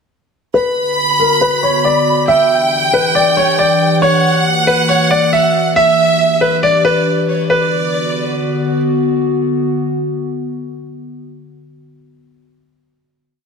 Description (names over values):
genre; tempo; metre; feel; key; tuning
hip hop, drill; 138 BPM; 4/4; half-time; B harmonic minor; A4 = 440 Hz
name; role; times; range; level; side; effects
clear concert grand piano; melody; 0.5-8.8 s; A#4 to E5; -14 LUFS; equal; low-pass filter
warm studio violin section; second line; 0.5-8.8 s; C#5 to B5; -16 LUFS; right 1 dB; ping-pong delay
warbly tape-like pad; sustained chords; 1.0-11.7 s; D3 to G4; -18 LUFS; left 1 dB; chorus, built-in reverb, low-pass filter
room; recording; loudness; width
moderate lush hall reverb, RT60 2.7 s; none; -11 LUFS; side -5 dB against mid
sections
0.5-7.5 breakdown; 7.5-11.0 final chord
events
filter sweep 0.5-7.5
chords
0.5 Bm; 2.3 Em7; 4.0 F#7; 5.8 Em7; 7.5 Bm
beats
| 0.54 0.98 1.41 1.85 | 2.28 2.72 3.15 3.58 | 4.02 4.46 4.89 5.33 | 5.76 6.19 6.63 7.06 | 7.50 7.93 8.37 8.80 | 9.24 9.67 10.11 10.54